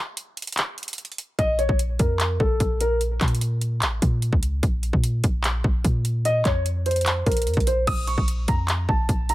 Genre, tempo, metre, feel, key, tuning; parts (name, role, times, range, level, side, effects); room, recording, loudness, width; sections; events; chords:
hip hop, trap; 148 BPM; 4/4; half-time; Bb harmonic minor; A4 = 440 Hz
trap drum kit; drums; 0.2-9.3 s; crash cymbal, handclaps, hi-hat, kick drum; -24 LUFS; equal
dark concert grand piano; melody; 1.4-3.0, 6.3-9.3 s; A4 to Eb6; -25 LUFS; equal
warm 808-style bass; bass; 1.4-9.3 s; A1 to Bb2; -24 LUFS; equal
little or no reverb; -20 LUFS; side -16 dB against mid
0.0-7.9 A section; 7.9-9.3 B section
break 0.0-1.4
0.0 N.C.; 4.6 F5/Bb